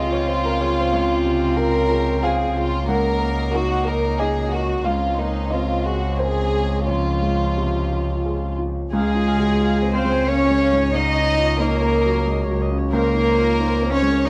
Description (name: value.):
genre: neoclassical piano and strings.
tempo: 91 BPM.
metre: 3/4.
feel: rubato.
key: Db major.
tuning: A4 = 439 Hz.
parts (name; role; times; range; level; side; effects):
warm chamber violin section; melody; 0.0-14.3 s; Eb4 to Eb5; -25 LUFS; equal; none.
warm cello; second line; 0.0-14.3 s; F3 to Eb4; -26 LUFS; equal; none.
dark upright piano; accompaniment; 0.0-14.3 s; Db2 to Gb5; -28 LUFS; equal; none.
dark viola; accompaniment; 0.0-14.3 s; C4 to Ab5; -34 LUFS; equal; none.
rich double bass; bass; 0.0-14.3 s; Db2; -26 LUFS; equal; none.
room: light reverb, small room ambience.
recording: none.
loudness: -20 LUFS.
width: mono.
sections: 0.0-8.9 A section; 8.9-14.3 B section.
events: none.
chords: 0.0 Dbmaj7; 2.9 Ebm7/Db; 4.9 Abadd9/Db; 6.9 Dbmaj7; 10.9 Ebm7/Db; 12.9 Abadd9/Db.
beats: 0.26 | 0.92 1.57 2.23 | 2.89 3.54 4.20 | 4.86 5.52 6.19 | 6.88 7.57 8.25 | 8.94 9.61 10.28 | 10.94 11.60 12.26 | 12.93 13.59 14.25.